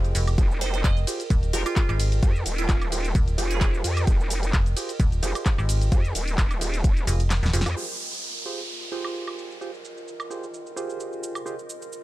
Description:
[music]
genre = bass house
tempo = 130 BPM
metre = 4/4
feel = swing 54% on 16ths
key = F minor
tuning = A4 = 437 Hz
[part]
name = percussive organ stab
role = stabs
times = 0.0-11.6 s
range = F4 to Eb5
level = -35 LUFS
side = right 3 dB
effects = chorus, sidechain pumping, ping-pong delay
[part]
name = metallic FM bass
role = bass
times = 0.0-7.6 s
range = Eb1 to Ab1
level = -23 LUFS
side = equal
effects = overdrive, sidechain pumping
[part]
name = house drum kit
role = drums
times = 0.0-12.0 s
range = cabasa, handclaps, hi-hat, ride cymbal, snare drum, woodblock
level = -31 LUFS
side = equal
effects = low-pass filter on hats, low-pass filter on perc, low-pass filter on cymbals, low-pass filter on snare
[part]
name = warbly tape-like pad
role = texture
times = 0.0-12.0 s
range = F4 to G5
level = -38 LUFS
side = right 2 dB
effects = chorus, built-in reverb, sidechain pumping
[part]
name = vowel-sweep wobble bass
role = bass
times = 0.4-7.7 s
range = Eb1 to F2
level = -26 LUFS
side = equal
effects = chorus, overdrive, sidechain pumping
[part]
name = electronic kick drum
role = drums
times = 0.4-6.9 s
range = none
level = -21 LUFS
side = equal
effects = none
[part]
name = glassy wavetable pluck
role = melody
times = 0.6-3.7 s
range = F4 to Eb5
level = -33 LUFS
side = right 5 dB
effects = chorus, ping-pong delay
[part]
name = downlifter and riser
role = sound effects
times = 7.8-12.0 s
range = none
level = -34 LUFS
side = right 2 dB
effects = none
[sound]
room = digital ambience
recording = none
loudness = -22 LUFS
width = side -16 dB against mid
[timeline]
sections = 0.0-7.8 A section; 7.8-12.0 B section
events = drop 0.0-7.8; kick drops out 7.3-7.8; drum fill 7.3-7.8; riser 11.5-12.0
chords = 0.0 Fmadd9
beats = | 0.38 0.84 1.30 1.76 | 2.23 2.69 3.15 3.61 | 4.07 4.53 5.00 5.46 | 5.92 6.38 6.84 7.30 | 7.76 8.23 8.69 9.15 | 9.61 10.07 10.53 11.00 | 11.46 11.92

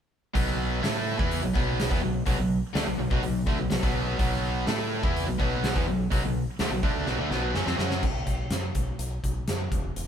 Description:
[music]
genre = classic rock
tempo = 125 BPM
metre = 4/4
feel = straight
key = B minor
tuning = A4 = 440 Hz
[part]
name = cranked stack guitar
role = riff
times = 0.3-8.0 s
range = B2 to A4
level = -31 LUFS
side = left 6 dB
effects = overdrive
[part]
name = distorted electric guitar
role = riff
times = 0.3-8.0 s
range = B2 to A4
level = -30 LUFS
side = right 7 dB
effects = overdrive
[part]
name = growling fingered electric bass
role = bass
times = 0.4-10.1 s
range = E1 to A2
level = -31 LUFS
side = equal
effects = overdrive
[part]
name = huge arena drum kit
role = drums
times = 0.4-10.1 s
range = crash cymbal, hi-hat, kick drum, snare drum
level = -28 LUFS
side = equal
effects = none
[sound]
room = light reverb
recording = band playing live in one room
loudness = -24 LUFS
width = side -8 dB against mid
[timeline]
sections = 0.3-8.0 A section; 8.0-10.1 B section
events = drum fill 7.1-8.0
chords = 0.3 Bm; 8.0 B5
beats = | 0.34 0.82 1.31 1.79 | 2.27 2.75 3.23 3.71 | 4.19 4.67 5.15 5.63 | 6.11 6.59 7.07 7.55 | 8.03 8.51 8.99 9.47 | 9.95

